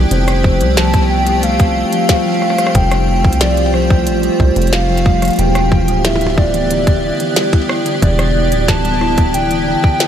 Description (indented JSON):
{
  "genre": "IDM",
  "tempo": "91 BPM",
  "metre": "4/4",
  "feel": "straight",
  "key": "E phrygian",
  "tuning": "A4 = 441 Hz",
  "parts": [
    { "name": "icy glass pad", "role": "sustained chords", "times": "0.0-10.1 s", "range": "A3 to G5", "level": "-18 LUFS", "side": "right 2 dB", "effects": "chorus, built-in reverb, shimmer reverb" },
    { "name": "buzzing kalimba", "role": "arpeggios", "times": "0.0-9.8 s", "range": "D3 to E4", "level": "-20 LUFS", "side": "left 4 dB", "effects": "ping-pong delay, shimmer reverb" },
    { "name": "deep acid bass", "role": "bass", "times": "0.0-9.8 s", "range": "D1 to C2", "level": "-16 LUFS", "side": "equal", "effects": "none" },
    { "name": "warbly nostalgic lead", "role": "melody", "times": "0.1-10.1 s", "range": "C5 to A5", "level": "-19 LUFS", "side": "equal", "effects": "chorus, tape echo, shimmer reverb" },
    { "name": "glitchy drum kit", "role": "drums", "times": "0.1-10.1 s", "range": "hi-hat, percussion blips, rim click, snare drum", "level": "-22 LUFS", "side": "equal", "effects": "overdrive" },
    { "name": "electronic kick drum", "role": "drums", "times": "0.4-10.0 s", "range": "none", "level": "-12 LUFS", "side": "equal", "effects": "overdrive" }
  ],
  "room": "moderate huge ambient reverb, RT60 7.3 s",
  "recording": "dreamy mix soaked in reverb",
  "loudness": "-11 LUFS",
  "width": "side -9 dB against mid",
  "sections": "0.0-10.1 A section",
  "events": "none",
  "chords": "0.1 Fadd9; 5.4 Em7"
}